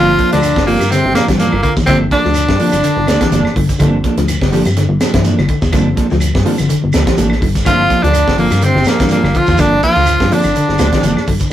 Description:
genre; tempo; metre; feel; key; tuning
afrobeat; 124 BPM; 4/4; swing 55% on 16ths; G dorian; A4 = 440 Hz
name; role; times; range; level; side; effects
edgy tenor saxophone; melody; 0.0-3.5, 7.7-11.3 s; Bb3 to F4; -15 LUFS; equal; none
clear trombone; second line; 0.0-3.5, 7.7-11.3 s; Bb3 to F4; -21 LUFS; equal; none
growling baritone saxophone; second line; 0.0-3.5, 7.7-11.3 s; Bb2 to F3; -22 LUFS; right 3 dB; none
barky reed electric piano; accompaniment; 0.0-11.5 s; D3 to G4; -22 LUFS; right 1 dB; overdrive, fast tremolo
semi-hollow electric guitar; arpeggios; 0.0-11.5 s; D3 to F3; -20 LUFS; left 3 dB; spring reverb
mellow electric guitar; stabs; 0.0-11.4 s; F3 to A4; -19 LUFS; right 3 dB; none
plucky analog bass; bass; 0.0-11.4 s; G1 to G2; -16 LUFS; equal; none
tight funk drum kit; drums; 0.2-11.5 s; hi-hat, kick drum, snare drum; -18 LUFS; equal; none
shekere; percussion; 0.3-11.5 s; none; -27 LUFS; equal; none
claves; percussion; 0.4-11.3 s; none; -30 LUFS; right 1 dB; none
room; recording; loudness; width
moderate studio reverb, RT60 0.6 s; rough rehearsal-room recording, warm saturation; -10 LUFS; side -12 dB against mid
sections
0.0-11.5 A section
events
none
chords
0.0 Gm9

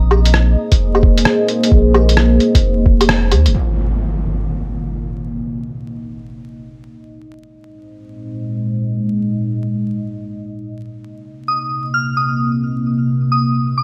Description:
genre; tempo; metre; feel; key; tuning
future garage; 131 BPM; 4/4; swing 64% on 16ths; C minor; A4 = 440 Hz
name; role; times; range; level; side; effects
dark analog pad; sustained chords; 0.0-13.8 s; Bb2 to Eb5; -22 LUFS; equal; chorus, sidechain pumping
soft dub sub bass; bass; 0.0-3.5 s; F1 to Eb2; -16 LUFS; equal; tube saturation, sidechain pumping
lo-fi sampler-style drum kit; drums; 0.1-3.5 s; hi-hat, rim click, woodblock; -19 LUFS; equal; small room ambience
electronic kick drum; drums; 0.7-3.0 s; none; -15 LUFS; equal; small room ambience
impact; sound effects; 3.5-5.4 s; none; -24 LUFS; equal; none
soft synth bell; melody; 11.5-13.8 s; Eb6 to F6; -22 LUFS; equal; chorus, delay
room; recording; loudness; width
light reverb; vinyl crackle; -16 LUFS; mono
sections
0.0-3.5 A section; 3.5-13.8 B section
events
band accent 3.1; impact 3.5-5.4; filter sweep on analog synth pad 3.5-13.8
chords
0.0 Bb9sus4; 3.5 Cm7; 7.2 Bb9sus4; 10.9 Cm7

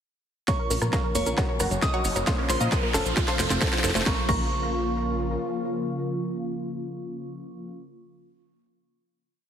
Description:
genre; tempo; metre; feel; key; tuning
uplifting trance; 134 BPM; 4/4; straight; Bb harmonic minor; A4 = 442 Hz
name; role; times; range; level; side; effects
wide unison pluck; melody; 0.5-7.9 s; A4 to Eb6; -31 LUFS; left 1 dB; sidechain pumping, ping-pong delay
glassy synth bell; second line; 0.5-7.9 s; C5 to Eb6; -33 LUFS; right 2 dB; chorus, phaser, tape echo
filtered supersaw swell; sustained chords; 0.5-7.7 s; C3 to Gb4; -31 LUFS; left 1 dB; sidechain pumping
wide unison pluck; arpeggios; 0.5-4.4 s; A3 to Bb4; -34 LUFS; right 3 dB; sidechain pumping, ping-pong delay
electronic kick drum; drums; 0.5-4.4 s; none; -27 LUFS; equal; none
techno drum kit; drums; 0.5-4.4 s; crash cymbal, hi-hat, rim click, snare drum; -31 LUFS; equal; high-pass filter on snare, high-pass filter on hats, high-pass filter on cymbals, high-pass filter on room
maracas; percussion; 0.5-4.0 s; none; -34 LUFS; right 3 dB; none
riser; sound effects; 1.5-4.1 s; none; -34 LUFS; right 2 dB; none
plucky analog bass; bass; 0.7-5.4 s; F1 to Bb2; -29 LUFS; equal; sidechain pumping
room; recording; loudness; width
moderate lush hall reverb, RT60 2.2 s; heavily compressed radio sound, multiband compression; -23 LUFS; side -8 dB against mid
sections
0.5-4.1 build; 4.1-7.6 final chord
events
build-up 0.5-4.1; drum fill 0.5-4.1; filter sweep on synth pluck 0.5-4.1; filter sweep on synth arpeggio sound 0.5-4.1; riser 1.5-4.1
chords
0.5 Bbm; 1.4 Gb; 2.3 Bbm; 3.2 F; 4.1 Bbm

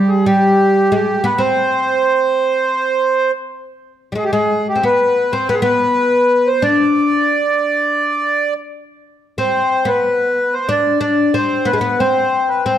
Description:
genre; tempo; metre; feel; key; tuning
Arabic maqam ensemble; 92 BPM; 4/4; straight; unclear; A4 = 441 Hz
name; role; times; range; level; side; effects
accordion; melody; 0.0-12.8 s; G4 to D5; -15 LUFS; right 2 dB; none
oud; second line; 0.0-12.8 s; G3 to D4; -18 LUFS; left 2 dB; none
room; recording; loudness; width
moderate recital hall reverb, RT60 1.5 s; dark, warm production; -13 LUFS; side -10 dB against mid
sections
0.0-12.8 A section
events
none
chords
none

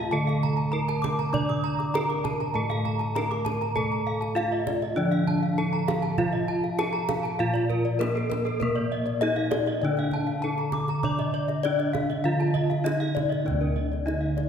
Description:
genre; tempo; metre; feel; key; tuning
Balinese gamelan; 99 BPM; 4/4; straight; D pelog; A4 = 438 Hz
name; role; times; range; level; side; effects
gamelan-type bronze metallophone; melody; 0.0-14.5 s; Bb3 to D5; -30 LUFS; equal; none
gamelan-type bronze metallophone; accompaniment; 0.0-14.5 s; D3 to D4; -35 LUFS; left 2 dB; none
gamelan-type bronze metallophone; arpeggios; 0.0-14.4 s; A4 to Eb6+35c; -34 LUFS; right 4 dB; none
gamelan-type bossed gongs; bass; 0.0-14.5 s; D2 to D5; -28 LUFS; equal; none
gamelan-type bronze metallophone; arpeggios; 0.1-14.5 s; Bb4 to D6; -30 LUFS; left 3 dB; none
kendang; percussion; 0.3-14.5 s; none; -34 LUFS; right 3 dB; none
room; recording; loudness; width
wet concert hall reverb, RT60 1.9 s; recorded in a church or concert hall; -24 LUFS; side -7 dB against mid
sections
0.0-13.5 A section; 13.5-14.5 A section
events
none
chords
none

